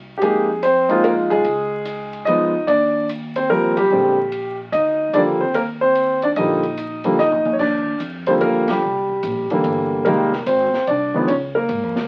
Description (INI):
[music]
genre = jazz piano trio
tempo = 147 BPM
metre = 3/4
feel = swing 66% on 8ths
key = Eb major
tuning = A4 = 440 Hz
[part]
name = upright bass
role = bass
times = 0.0-12.1 s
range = F1 to Ab2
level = -34 LUFS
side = equal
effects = none
[part]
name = warm concert grand piano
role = melody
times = 0.2-12.1 s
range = D3 to Eb5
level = -19 LUFS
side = equal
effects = none
[part]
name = open jazz drum kit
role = drums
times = 0.2-12.0 s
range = crash cymbal, hi-hat, kick drum, ride cymbal, snare drum, toms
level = -36 LUFS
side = equal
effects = none
[sound]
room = wet small room reverb, RT60 0.5 s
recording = very old 78 rpm record, vinyl crackle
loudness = -19 LUFS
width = mono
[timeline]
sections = 0.0-7.6 A section; 7.6-12.1 A section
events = band accent 3.7, 8.6; drum fill 7.2-7.6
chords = 0.2 Fm11; 1.5 Dbsus2; 2.7 Eb6; 3.9 Bb6; 5.1 Ebmaj9; 8.8 C7; 10.1 Fm11; 11.3 Db